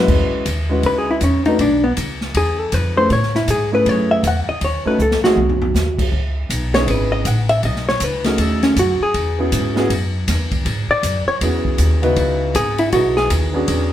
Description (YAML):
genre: jazz, small-group swing and bop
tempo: 159 BPM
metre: 4/4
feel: swing 63% on 8ths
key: E major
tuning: A4 = 439 Hz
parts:
  - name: warm grand piano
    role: accompaniment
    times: 0.0-13.9 s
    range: C#3 to B4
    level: -20 LUFS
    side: equal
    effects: none
  - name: upright bass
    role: bass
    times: 0.0-13.9 s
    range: G#1 to A2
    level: -20 LUFS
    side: equal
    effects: none
  - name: open jazz drum kit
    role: drums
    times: 0.1-13.8 s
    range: crash cymbal, hi-hat, kick drum, ride cymbal, snare drum, toms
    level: -24 LUFS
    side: left 1 dB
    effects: none
  - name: hollow-body jazz guitar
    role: melody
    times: 0.9-13.3 s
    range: B3 to F#5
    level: -18 LUFS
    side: left 1 dB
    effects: none
room: wet club reverb, RT60 0.8 s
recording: heard from further back in the room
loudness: -15 LUFS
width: side -12 dB against mid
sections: 0.1-12.2 A section; 12.2-13.9 B section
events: hollow-body jazz guitar solo 0.1-12.2; drum fill 5.0-5.7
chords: 0.1 E6; 1.6 Bsus2; 2.3 E; 3.1 Amaj9; 4.6 D#m7b5; 5.4 Cdim; 6.1 C#m9; 7.6 B13; 9.1 E6; 12.2 C#m11